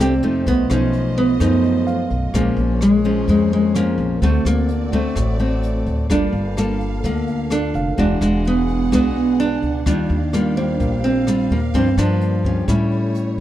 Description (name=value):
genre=bossa nova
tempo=128 BPM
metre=4/4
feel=straight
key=unclear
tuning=A4 = 442 Hz
part: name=nylon-string guitar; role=melody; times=0.0-13.4 s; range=Ab3 to D4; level=-20 LUFS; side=right 1 dB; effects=none
part: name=nylon-string guitar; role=accompaniment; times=0.0-13.4 s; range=F2 to A4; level=-21 LUFS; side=left 2 dB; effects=none
part: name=tine electric piano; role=accompaniment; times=0.0-2.5, 7.8-11.9 s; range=C5 to G5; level=-32 LUFS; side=right 4 dB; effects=none
part: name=warm symphonic string section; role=sustained chords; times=0.0-13.4 s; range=A3 to F#5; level=-32 LUFS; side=equal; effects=none
part: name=upright bass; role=bass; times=0.0-13.4 s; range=E1 to A2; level=-23 LUFS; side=equal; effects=none
part: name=jazz brush drum kit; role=drums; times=0.0-13.4 s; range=hi-hat, kick drum, rim click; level=-26 LUFS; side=equal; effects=none
room=light reverb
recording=dry, close 1970s-style studio recording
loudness=-16 LUFS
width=side -12 dB against mid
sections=0.0-13.4 A section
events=none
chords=0.5 B7#11; 2.3 Bbm7; 4.2 D7; 6.1 Gm9; 8.0 E9; 9.9 Ebmaj9; 11.7 Gm7; 12.7 A7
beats=| 0.46 0.93 1.40 1.87 | 2.34 2.81 3.28 3.75 | 4.22 4.69 5.16 5.63 | 6.10 6.57 7.04 7.51 | 7.98 8.45 8.92 9.39 | 9.86 10.33 10.80 11.27 | 11.74 12.21 12.68 13.15